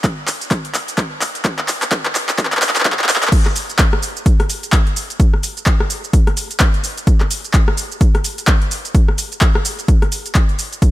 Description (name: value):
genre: house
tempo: 128 BPM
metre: 4/4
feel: swing 59% on 16ths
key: none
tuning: none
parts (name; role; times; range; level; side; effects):
- electronic kick drum; drums; 0.0-10.9 s; none; -14 LUFS; equal; overdrive
- punchy analog drum machine; drums; 0.0-10.9 s; crash cymbal, handclaps, hi-hat, rim click, shaker; -18 LUFS; equal; overdrive
room: light reverb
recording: high-pass filter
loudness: -14 LUFS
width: side -16 dB against mid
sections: 0.0-3.3 A section; 3.3-10.9 B section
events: build-up 0.0-3.3; drum fill 0.0-3.3; drop 3.3-10.9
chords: none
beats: 0.04 0.51 0.98 | 1.45 1.92 2.38 2.85 | 3.32 3.79 4.26 4.73 | 5.20 5.67 6.13 6.60 | 7.07 7.54 8.01 8.48 | 8.95 9.42 9.88 10.35 | 10.82